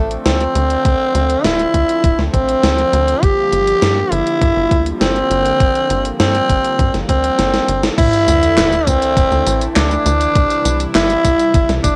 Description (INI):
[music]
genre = synthwave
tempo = 101 BPM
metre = 4/4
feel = straight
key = D minor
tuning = A4 = 443 Hz
[part]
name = growling tenor saxophone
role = melody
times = 0.0-12.0 s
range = A3 to G4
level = -17 LUFS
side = equal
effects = cassette tape, tape echo
[part]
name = phased analog pad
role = sustained chords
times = 0.0-12.0 s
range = C3 to E4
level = -28 LUFS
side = equal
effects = phaser, chorus, sidechain pumping, cassette tape
[part]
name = tight sequencer bass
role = bass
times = 0.0-12.0 s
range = D1 to G2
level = -22 LUFS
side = equal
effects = none
[part]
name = gated 80s digital drum machine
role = drums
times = 0.1-12.0 s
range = crash cymbal, handclaps, hi-hat, snare drum, tambourine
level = -21 LUFS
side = equal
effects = gated reverb, gated reverb snare, cassette tape
[part]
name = electronic kick drum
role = drums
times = 0.9-12.0 s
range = none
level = -19 LUFS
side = equal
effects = cassette tape
[part]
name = sub drop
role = sound effects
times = 8.0-10.4 s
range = none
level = -27 LUFS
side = equal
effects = none
[sound]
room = light reverb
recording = home recording on cassette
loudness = -15 LUFS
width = mono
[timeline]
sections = 0.0-8.0 A section; 8.0-12.0 B section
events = drum fill 7.4-8.0; band accent 7.8; impact 8.0-10.4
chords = 0.0 Dm7; 3.2 Gm7; 8.0 Dsus2; 10.4 C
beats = 0.26 | 0.85 1.45 2.04 2.63 | 3.23 3.82 4.42 5.01 | 5.60 6.20 6.79 7.39 | 7.98 8.57 9.17 9.76 | 10.36 10.95 11.54